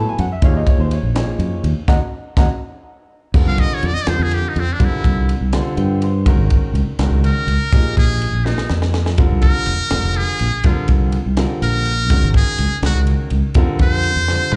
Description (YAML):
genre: electric jazz fusion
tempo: 82 BPM (dotted quarters)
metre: 6/8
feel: straight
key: unclear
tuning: A4 = 435 Hz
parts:
  - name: clear baby grand piano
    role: accompaniment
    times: 0.0-14.6 s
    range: C3 to Bb5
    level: -26 LUFS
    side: equal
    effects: slapback echo
  - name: fretless electric bass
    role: bass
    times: 0.0-14.6 s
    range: F1 to Ab2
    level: -20 LUFS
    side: equal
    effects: none
  - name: tight funk drum kit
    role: drums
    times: 0.2-14.6 s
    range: crash cymbal, kick drum, ride cymbal, snare drum, toms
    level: -19 LUFS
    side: equal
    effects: none
  - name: trumpet with metal mute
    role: melody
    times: 3.5-14.6 s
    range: C4 to F5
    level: -24 LUFS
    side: equal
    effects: slapback echo
room: small room ambience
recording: live gig heard through the venue's PA, club ambience, nothing above 10.4 kHz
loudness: -17 LUFS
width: mono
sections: 0.0-3.3 A section; 3.3-14.6 A section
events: band accent 1.9-3.3; drum fill 2.6-3.3, 8.5-9.2, 14.3; grand piano fill 2.6-3.3, 5.5-6.3; muted trumpet solo 3.3-14.6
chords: 0.4 Ebm11; 3.3 C9sus4; 6.3 Dbsus24; 7.7 Bb9sus4; 9.2 Fsus24; 10.6 C9sus4; 12.1 Dbsus24; 13.6 Fsus24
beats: | 0.43 1.16 | 1.89 2.62 | 3.35 4.08 | 4.80 5.53 | 6.26 6.99 | 7.72 8.45 | 9.18 9.91 | 10.64 11.37 | 12.10 12.83 | 13.56 14.29